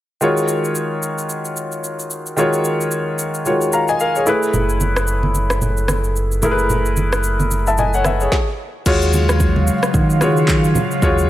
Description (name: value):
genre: amapiano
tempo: 111 BPM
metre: 4/4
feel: swing 58% on 16ths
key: Eb minor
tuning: A4 = 440 Hz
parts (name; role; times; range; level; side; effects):
- warm concert grand piano; accompaniment; 0.2-11.3 s; Eb3 to Bb5; -18 LUFS; left 1 dB; none
- deep house drum kit; drums; 0.2-11.3 s; crash cymbal, handclaps, kick drum, rim click, shaker, snare drum; -22 LUFS; equal; none
- sub bass with octave; bass; 4.5-11.3 s; Gb1 to Eb3; -18 LUFS; equal; none
- congas; percussion; 4.5-10.9 s; none; -24 LUFS; right 2 dB; none
- airy breathy pad; sustained chords; 8.9-11.3 s; Db3 to F5; -22 LUFS; right 1 dB; chorus
room: light reverb, digital ambience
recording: none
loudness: -15 LUFS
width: side -14 dB against mid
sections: 0.2-8.9 A section; 8.9-11.3 B section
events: stop 8.3-8.9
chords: 0.2 Ebm11; 4.3 Gbm11; 8.9 Ebm11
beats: | 0.21 0.75 1.29 1.83 | 2.37 2.92 3.46 4.00 | 4.54 5.08 5.62 6.16 | 6.70 7.24 7.78 8.32 | 8.86 9.40 9.94 10.48 | 11.02